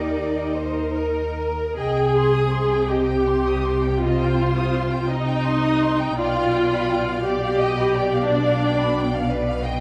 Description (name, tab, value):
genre	classical, slow romantic movement for string orchestra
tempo	45-60 BPM (dotted quarters)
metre	12/8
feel	rubato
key	C minor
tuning	A4 = 440 Hz
part	dark studio violin section	melody	0.0-9.8 s	B4 to Eb5	-31 LUFS	equal	none
part	rich studio violin section	second line	0.0-9.8 s	Bb4 to Eb6	-33 LUFS	equal	none
part	rich studio viola section	accompaniment	0.0-9.3 s	D4 to Bb4	-24 LUFS	equal	none
part	rich studio cello section	bass	0.0-9.8 s	B2 to Eb4	-28 LUFS	equal	none
part	rich studio double bass section	bass	0.0-9.8 s	B1 to Eb2	-31 LUFS	equal	none
room	moderate recital hall reverb, RT60 1.4 s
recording	none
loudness	-21 LUFS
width	mono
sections	0.0-1.8 A section; 1.8-9.8 B section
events	none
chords	0.0 Eb; 1.8 Cm; 6.2 G7/B